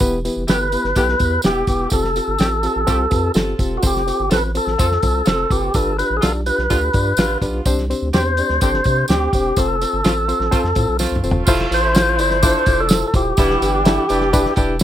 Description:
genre	uptempo 1960s-style soul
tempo	126 BPM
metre	4/4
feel	straight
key	unclear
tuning	A4 = 440 Hz
part	barky reed electric piano	accompaniment	0.0-14.8 s	G2 to D5	-23 LUFS	left 2 dB	overdrive, fast tremolo
part	round analog bass	bass	0.0-14.8 s	Eb1 to C3	-23 LUFS	equal	none
part	warm soul drum kit	drums	0.0-14.8 s	crash cymbal, hi-hat, kick drum, snare drum, toms	-18 LUFS	equal	none
part	tambourine	percussion	0.0-14.8 s	none	-30 LUFS	right 5 dB	none
part	tonewheel organ	melody	0.5-14.5 s	F#4 to C5	-19 LUFS	equal	overdrive, slow rotary speaker, slapback echo
part	clear saxophone section	second line	0.5-14.8 s	F3 to A4	-25 LUFS	right 1 dB	none
room	light reverb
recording	none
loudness	-15 LUFS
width	side -11 dB against mid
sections	0.0-11.5 A section; 11.5-14.8 B section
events	drum fill 11.0-11.5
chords	0.0 Em; 1.9 Fadd9; 3.8 F; 5.7 G7; 7.7 Csus2; 9.6 F; 11.5 Fmaj7; 13.4 Em7

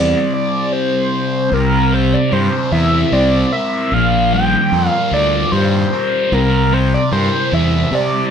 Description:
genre	rock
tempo	50 BPM (dotted quarters)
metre	6/8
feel	straight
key	unclear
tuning	A4 = 440 Hz
part	overdriven synth lead	melody	0.0-8.3 s	Bb4 to G5	-18 LUFS	equal	distortion, chorus
part	thick fuzz guitar	riff	0.0-8.3 s	Bb2 to Bb4	-17 LUFS	left 1 dB	distortion, phaser
part	fuzz fingered electric bass	bass	0.0-8.2 s	Bb1 to C3	-17 LUFS	equal	overdrive
room	moderate studio ambience, RT60 0.5 s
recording	band playing live in one room, nothing above 10.6 kHz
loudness	-13 LUFS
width	side -7 dB against mid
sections	0.0-1.5 A section; 1.5-8.3 B section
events	break 0.3-1.5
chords	0.0 C5; 1.5 C7; 3.9 Bb6; 6.3 C7

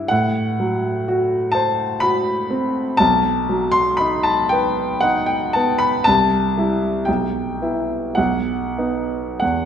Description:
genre	classical, romantic nocturne for solo piano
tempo	45-64 BPM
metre	3/4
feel	rubato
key	unclear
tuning	A4 = 440 Hz
part	warm grand piano	solo	0.0-9.7 s	B1 to C6	-17 LUFS	equal	none
room	moderate recital hall reverb, RT60 1.4 s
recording	none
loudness	-17 LUFS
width	side -8 dB against mid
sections	0.0-9.7 A section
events	none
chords	0.1 F#dim/A; 3.0 B; 6.1 C; 7.1 Em/B; 8.2 B

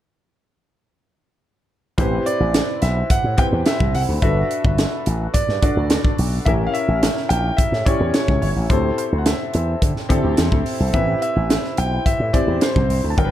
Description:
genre	polished 1980s jazz-funk pop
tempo	107 BPM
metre	4/4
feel	straight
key	A dorian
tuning	A4 = 440 Hz
part	clear grand piano	melody	2.0-13.3 s	C5 to A5	-24 LUFS	right 1 dB	none
part	clear baby grand piano	accompaniment	2.0-13.3 s	F#3 to D5	-24 LUFS	left 2 dB	lush chorus
part	slap bass with an envelope filter	bass	2.0-13.3 s	G1 to D3	-20 LUFS	equal	none
part	crisp fusion drum kit	drums	2.0-13.3 s	hi-hat, kick drum, snare drum	-20 LUFS	equal	none
room	light reverb, studio ambience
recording	dark, warm production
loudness	-16 LUFS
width	side -12 dB against mid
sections	2.0-13.3 A section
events	none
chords	2.0 Am9; 4.2 Gmaj9; 6.5 A7b9; 8.7 D9sus4; 10.9 Am9

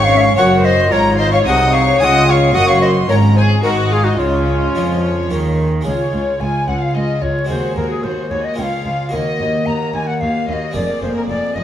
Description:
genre	classical, baroque-style concerto movement with solo episodes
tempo	110 BPM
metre	3/4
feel	straight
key	Db major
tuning	A4 = 440 Hz
part	bright wooden flute	melody	0.0-11.6 s	F4 to Bb5	-19 LUFS	left 1 dB	none
part	warm chamber violin section	melody	0.0-11.6 s	Gb4 to Eb6	-24 LUFS	left 2 dB	none
part	rich chamber violin section	second line	0.0-11.6 s	Db4 to Bb5	-21 LUFS	left 3 dB	none
part	dark chamber viola section	accompaniment	0.0-11.6 s	Bb3 to Gb4	-22 LUFS	equal	none
part	harpsichord	accompaniment	0.0-11.6 s	Db2 to Db5	-23 LUFS	equal	none
part	warm chamber cello section	bass	0.0-11.6 s	Db2 to F3	-20 LUFS	right 1 dB	none
part	warm studio double bass section	bass	0.0-11.6 s	F1 to F2	-22 LUFS	right 1 dB	none
room	wet recital hall reverb, RT60 1.5 s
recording	vinyl crackle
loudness	-13 LUFS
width	side -10 dB against mid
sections	0.0-5.9 A section; 5.9-11.6 B section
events	none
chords	0.4 Gb; 0.9 Ab7; 2.0 Db; 2.6 Ebm/Gb; 3.1 Db/Ab; 3.6 Ab; 4.2 Db; 7.5 Ab5/Eb; 8.6 Db; 9.1 Ebm; 10.8 Bb5/F

